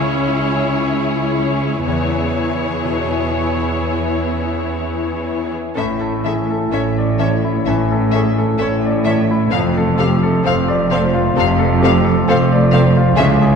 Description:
cinematic, emotional film score for orchestra; 61-67 BPM; 4/4; rubato; A major; A4 = 441 Hz
rich studio violin section; second line; 0.0-13.2 s; G#4 to C#5; -25 LUFS; left 2 dB
bright grand piano; accompaniment; 0.0-13.6 s; C#2 to D5; -21 LUFS; left 1 dB
rich studio viola section; accompaniment; 0.0-13.3 s; B3 to E4; -24 LUFS; equal
concert harp; arpeggios; 0.0-13.6 s; F2 to F4; -23 LUFS; left 5 dB
rich symphonic cello section; bass; 0.0-13.6 s; C#2 to A2; -20 LUFS; right 3 dB
rich symphonic violin section; melody; 5.8-13.2 s; E5 to F5; -24 LUFS; left 3 dB
mellow French horn section; sustained chords; 5.8-13.6 s; G#3 to E4; -23 LUFS; left 4 dB
rich symphonic double bass section; bass; 5.8-13.6 s; F1 to C#2; -20 LUFS; right 2 dB
wet concert hall reverb, RT60 2.3 s; heard from further back in the room; -14 LUFS; side -6 dB against mid
0.0-5.8 A section; 5.8-13.6 A section
0.0 C#m; 1.9 E6; 5.8 A; 9.5 F
0.92 | 1.86 2.83 3.81 4.79 | 5.77 6.72 7.67 8.60 | 9.52 10.45 11.37 12.28 | 13.18

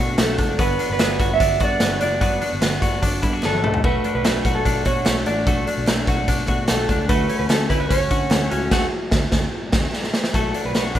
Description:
jangly indie pop; 148 BPM; 4/4; straight; B minor; A4 = 437 Hz
fingerpicked steel-string acoustic guitar; accompaniment; 0.0-11.0 s; G2 to D4; -31 LUFS; right 5 dB
twelve-string electric guitar; arpeggios; 0.0-11.0 s; A3 to F#4; -24 LUFS; left 2 dB
vintage muted picked electric bass; bass; 0.0-11.0 s; F#1 to D3; -27 LUFS; equal
mellow electric guitar; melody; 0.2-11.0 s; F#4 to E5; -24 LUFS; right 2 dB
raw garage drum kit; drums; 0.2-11.0 s; crash cymbal, hi-hat, kick drum, snare drum, toms; -21 LUFS; equal
group handclap; percussion; 0.2-8.4 s; -39 LUFS; right 2 dB
light reverb; rough home demo mix; -17 LUFS; side -11 dB against mid
0.0-10.3 A section
drum fill 3.4-3.8, 9.9-10.3; band accent 8.7-10.3
0.0 Bm7; 0.6 Gmaj7; 3.6 Bm7; 7.1 Dmaj7; 10.3 Bm7
0.18 | 0.59 1.00 1.40 1.81 | 2.22 2.62 3.03 3.44 | 3.84 4.25 4.66 5.06 | 5.47 5.88 6.28 6.69 | 7.09 7.50 7.91 8.31 | 8.72 9.12 9.53 9.94 | 10.34 10.75

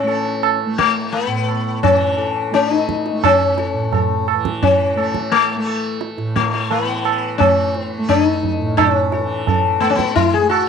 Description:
indian classical, Hindustani; 86 BPM; 4/4; straight; A raga yaman; A4 = 440 Hz
sitar; melody; 0.0-10.7 s; A3 to A4; -17 LUFS; left 6 dB
tanpura; drone; 0.0-10.7 s; A2 to A3; -24 LUFS; right 2 dB
tabla; percussion; 0.1-10.7 s; -20 LUFS; right 9 dB
light reverb, studio reverb; 1960s-style stereo with parts hard left and right; -15 LUFS; side -6 dB against mid
0.0-10.7 A section
| 0.43 1.13 1.83 2.53 | 3.23 3.93 4.62 5.32 | 6.01 6.71 7.40 8.10 | 8.79 9.48 10.17

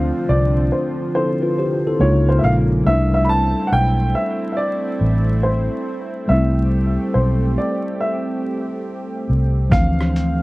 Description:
lo-fi hip hop; 70 BPM; 4/4; swing 64% on 16ths; D minor; A4 = 440 Hz
dark upright piano; melody; 0.0-10.4 s; C5 to B5; -23 LUFS; equal; analog delay
mellow tine electric piano; accompaniment; 0.0-10.4 s; C#3 to C5; -22 LUFS; left 1 dB; medium stereo tremolo, cassette tape
lush unison pad; sustained chords; 0.0-10.4 s; C#3 to F5; -26 LUFS; right 1 dB; chorus
vintage muted fingered electric bass; bass; 0.0-10.4 s; A1 to D2; -18 LUFS; equal
dusty soul sampler-style drum kit; drums; 9.7-10.4 s; hi-hat, kick drum, rim click, shaker; -18 LUFS; equal
light reverb; worn, warbling old tape, cassette tape, vinyl crackle, warbly pitch drift; -16 LUFS; side -20 dB against mid
0.0-10.4 A section
0.0 Dm7; 2.0 C#6; 2.9 C6; 6.3 Am7; 9.7 Dm7
0.29 1.15 2.01 | 2.87 3.72 4.58 5.44 | 6.29 7.15 8.01 8.87 | 9.72

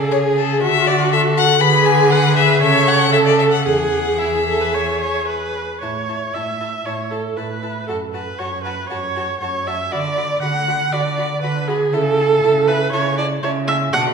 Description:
quick classical-period movement for string quartet; 118 BPM; 4/4; rubato; A major; A4 = 441 Hz
warm violin; second line; 0.0-14.1 s; D4 to B4; -24 LUFS; left 2 dB
rich viola; accompaniment; 0.0-14.0 s; E4 to F#5; -19 LUFS; right 2 dB
rich cello; bass; 0.0-14.1 s; E2 to D3; -22 LUFS; right 3 dB
rich violin; melody; 0.1-14.1 s; A4 to D6; -20 LUFS; left 7 dB
wet recital hall reverb, RT60 1.4 s; recorded in a church or concert hall; -15 LUFS; side -5 dB against mid
0.0-5.8 A section; 5.8-14.1 B section
0.0 A/C#; 0.6 Dadd9; 1.6 E9/D; 2.6 A/C#; 3.7 E; 5.8 A; 7.9 F#m; 9.9 Bm/D; 11.9 A/C#
0.12 0.62 1.12 | 1.61 2.11 2.61 3.13 | 3.65 4.19 4.74 5.28 | 5.82 6.34 6.86 7.37 | 7.88 8.39 8.90 9.41 | 9.92 10.42 10.93 11.43 | 11.93 12.43 12.93 13.43 | 13.93

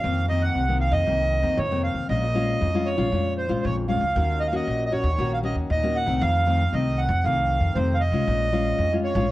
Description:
samba and choro; 116 BPM; 4/4; straight; Bb minor; A4 = 440 Hz
accordion; melody; 0.0-9.3 s; C5 to Gb5; -25 LUFS; right 2 dB
nylon-string guitar; accompaniment; 0.0-9.3 s; F2 to Gb4; -26 LUFS; left 3 dB
upright bass; bass; 0.0-9.3 s; Bb1 to F2; -25 LUFS; equal
light reverb; worn, warbling old tape, cassette tape, warbly pitch drift; -21 LUFS; side -16 dB against mid
0.0-9.3 A section
0.0 F7sus4; 2.1 Bbm7; 4.2 Ebm7; 6.2 F7; 8.3 Bbm7
| 0.03 0.55 1.06 1.58 | 2.09 2.61 3.12 3.64 | 4.16 4.67 5.18 5.70 | 6.22 6.73 7.25 7.76 | 8.28 8.79 9.31

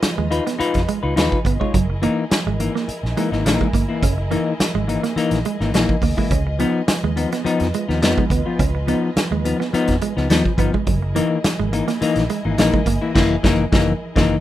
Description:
funk; 105 BPM; 4/4; straight; A4 = 440 Hz
semi-hollow electric guitar; accompaniment; 0.0-14.4 s; E3 to C#5; -21 LUFS; left 4 dB; plate reverb
dark studio string section; sustained chords; 0.0-14.4 s; E4 to D#5; -31 LUFS; equal; plate reverb
vintage muted fingered electric bass; bass; 0.0-14.4 s; F#1 to E#2; -22 LUFS; right 1 dB
vintage drum kit; drums; 0.0-14.3 s; crash cymbal, hi-hat, kick drum, snare drum; -21 LUFS; right 1 dB
semi-hollow electric guitar; riff; 0.2-13.0 s; F#3 to C#4; -25 LUFS; right 8 dB
moderate studio ambience, RT60 0.5 s; rough home demo mix; -17 LUFS; side -13 dB against mid
0.0-14.4 A section
band accent 13.2-14.4
0.0 C#9; 1.7 F#13; 6.3 C#9; 10.9 F#13
0.03 0.60 1.17 | 1.74 2.31 2.88 3.46 | 4.03 4.60 5.17 5.74 | 6.31 6.88 7.45 8.03 | 8.60 9.17 9.74 10.31 | 10.88 11.45 12.02 12.59 | 13.16 13.73 14.29

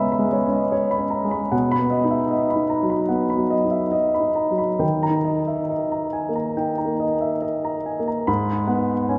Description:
neoclassical minimalist piano; 67-77 BPM; 4/4; rubato; A4 = 440 Hz
warm grand piano; solo; 0.0-9.2 s; G#2 to B5; -22 LUFS; equal
wet cathedral reverb, RT60 4.9 s; in a vast, echoing space; -22 LUFS; mono
0.0-8.3 A section
0.0 C#m7; 1.5 B; 4.8 D#; 8.3 B5/G#
0.72 | 1.52 2.31 3.11 3.94 | 4.82 5.71 6.58 7.43 | 8.28 9.09

